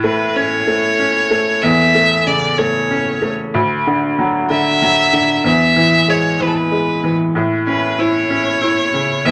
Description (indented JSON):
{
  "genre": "six-eight pop ballad",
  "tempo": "63 BPM (dotted quarters)",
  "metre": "6/8",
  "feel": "straight",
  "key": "A major",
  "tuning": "A4 = 441 Hz",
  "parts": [
    { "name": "clear violin", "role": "melody", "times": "0.0-9.3 s", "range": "A4 to E5", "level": "-18 LUFS", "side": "equal", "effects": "none" },
    { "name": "bright upright piano", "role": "accompaniment", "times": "0.0-9.3 s", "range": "D2 to E4", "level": "-18 LUFS", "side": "equal", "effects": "none" }
  ],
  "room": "wet studio ambience, RT60 0.5 s",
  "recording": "none",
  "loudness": "-15 LUFS",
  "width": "mono",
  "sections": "0.0-9.3 A section",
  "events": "none",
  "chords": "0.0 A; 3.5 Dadd9; 5.4 E; 7.3 A"
}